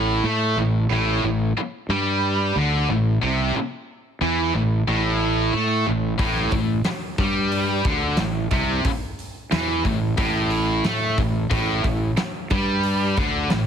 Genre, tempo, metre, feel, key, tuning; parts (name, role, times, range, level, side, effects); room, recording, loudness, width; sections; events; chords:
hard rock; 90 BPM; 4/4; straight; A minor; A4 = 439 Hz
heavy high-gain guitar; riff; 0.0-13.7 s; A2 to A3; -24 LUFS; left 9 dB; distortion
tight distorted guitar; riff; 0.0-13.7 s; A2 to A3; -24 LUFS; right 10 dB; distortion
fuzz fingered electric bass; bass; 0.0-13.7 s; A1 to A2; -25 LUFS; equal; overdrive
big rock drum kit; drums; 6.2-13.7 s; hi-hat, kick drum, snare drum; -26 LUFS; equal
studio reverb; heavily compressed radio sound; -19 LUFS; side -8 dB against mid
0.0-13.7 A section
0.0 Am